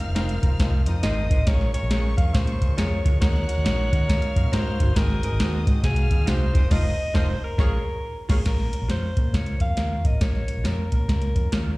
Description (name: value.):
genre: uptempo 1960s-style soul.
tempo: 137 BPM.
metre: 4/4.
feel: swing 63% on 8ths.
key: Bb minor.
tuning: A4 = 439 Hz.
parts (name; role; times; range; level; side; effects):
warm studio violin section; second line; 0.0-8.4 s; Db4 to Gb6; -38 LUFS; left 1 dB; slapback echo.
warm baby grand piano; accompaniment; 0.0-11.7 s; Bb3 to Bb4; -35 LUFS; left 4 dB; slapback echo.
vintage muted fingered electric bass; bass; 0.1-11.8 s; F1 to Eb3; -24 LUFS; equal; none.
electric guitar through a small old amp; stabs; 0.2-11.7 s; Eb4 to Db5; -37 LUFS; right 6 dB; slapback echo, tape echo.
soft vintage rhythm box; drums; 0.2-11.7 s; crash cymbal, hi-hat, kick drum, snare drum; -22 LUFS; equal; overdrive.
mellow horn section; second line; 0.4-1.5, 6.7-8.4 s; F3 to Db5; -36 LUFS; right 1 dB; slapback echo.
breathy alto saxophone; melody; 1.0-11.8 s; Ab4 to F5; -31 LUFS; equal; slapback echo.
room: little or no reverb.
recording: live gig heard through the venue's PA, recital hall reverb.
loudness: -20 LUFS.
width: side -21 dB against mid.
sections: 0.0-8.5 A section; 8.5-11.8 B section.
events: band accent 0.0-1.5, 6.7-8.5.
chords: 0.0 F7sus4; 1.5 Bbm7; 3.2 Ebm7; 5.0 Ab7; 6.5 F7sus4; 7.6 Bbm7; 8.5 Bbm.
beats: 0.16 0.60 1.03 | 1.47 1.91 2.34 2.78 | 3.22 3.65 4.09 4.53 | 4.96 5.40 5.84 6.28 | 6.71 7.15 7.59 8.02 | 8.46 8.90 9.34 9.78 | 10.21 10.65 11.09 11.53.